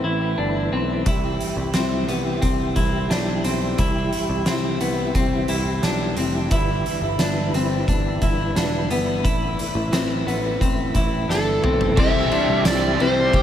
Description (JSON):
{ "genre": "dream pop", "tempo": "88 BPM", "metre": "4/4", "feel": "straight", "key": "C major", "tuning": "A4 = 440 Hz", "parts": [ { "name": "mellow tonewheel organ", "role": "sustained chords", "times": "0.0-13.4 s", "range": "D3 to B4", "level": "-27 LUFS", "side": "right 1 dB", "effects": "chorus vibrato, fast rotary speaker" }, { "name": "clean electric guitar", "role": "arpeggios", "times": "0.0-13.4 s", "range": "B3 to G4", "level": "-24 LUFS", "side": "left 2 dB", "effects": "wide subtle chorus, digital delay" }, { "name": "picked electric bass", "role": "bass", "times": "0.0-13.4 s", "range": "E1 to C2", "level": "-26 LUFS", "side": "equal", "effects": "none" }, { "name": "oversized low-tuned drum kit", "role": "drums", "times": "1.1-13.4 s", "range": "crash cymbal, hi-hat, kick drum, ride cymbal, snare drum, tambourine, toms", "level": "-24 LUFS", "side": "equal", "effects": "none" }, { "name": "overdriven slide guitar", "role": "melody", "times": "11.3-13.4 s", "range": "A4 to E5", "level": "-21 LUFS", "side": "left 1 dB", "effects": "digital delay" }, { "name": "overdriven semi-hollow guitar", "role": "accompaniment", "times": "12.0-13.4 s", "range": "C3 to G4", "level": "-27 LUFS", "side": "right 4 dB", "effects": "tremolo, analog chorus" }, { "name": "synth chime", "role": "texture", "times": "12.0-13.4 s", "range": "C6 to E6", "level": "-34 LUFS", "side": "right 2 dB", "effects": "ensemble chorus, digital delay" } ], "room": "light reverb, small room ambience", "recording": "none", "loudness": "-19 LUFS", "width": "side -10 dB against mid", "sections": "0.0-12.0 A section; 12.0-13.4 B section", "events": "drum fill 11.3-12.0", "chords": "0.0 Amadd9; 1.1 C; 6.5 G6; 9.2 Amadd9; 12.0 C" }